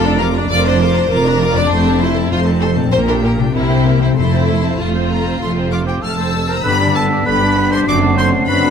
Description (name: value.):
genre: cinematic, playful, whimsical film cue.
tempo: 98 BPM.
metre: 4/4.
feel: straight.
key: F major.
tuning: A4 = 440 Hz.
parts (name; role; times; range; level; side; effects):
rich chamber violin section; melody; 0.0-8.7 s; E5 to F6; -24 LUFS; left 3 dB; none.
rich chamber violin section; second line; 0.0-8.7 s; D4 to D5; -20 LUFS; left 1 dB; none.
clear symphonic viola section; accompaniment; 0.0-8.7 s; D3 to D5; -22 LUFS; equal; none.
concert harp; arpeggios; 0.0-8.7 s; F2 to C5; -20 LUFS; left 9 dB; none.
rich studio cello section; bass; 0.0-8.7 s; F2 to C3; -19 LUFS; right 3 dB; none.
warm studio double bass section; bass; 0.0-8.7 s; F1 to C2; -21 LUFS; right 4 dB; none.
warm cor anglais; second line; 5.7-8.7 s; F4 to D5; -21 LUFS; right 3 dB; none.
concert flute; second line; 6.6-8.7 s; B6 to C7; -21 LUFS; equal; none.
warm clarinet; second line; 6.6-8.7 s; D4; -23 LUFS; left 1 dB; none.
mellow French horn section; sustained chords; 6.6-8.7 s; B3 to D4; -22 LUFS; left 4 dB; none.
room: moderate recital hall reverb, RT60 1.2 s.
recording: close, detailed microphones.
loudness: -12 LUFS.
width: side -7 dB against mid.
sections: 0.0-6.7 A section; 6.7-8.7 B section.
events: none.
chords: 0.0 Bb/F; 1.7 F; 2.9 Gm/Bb; 3.5 C7; 4.2 F; 6.7 G; 7.9 D7/F#.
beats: 0.49 1.10 | 1.71 2.32 2.93 3.55 | 4.17 4.79 5.41 6.03 | 6.65 7.26 7.88 8.48.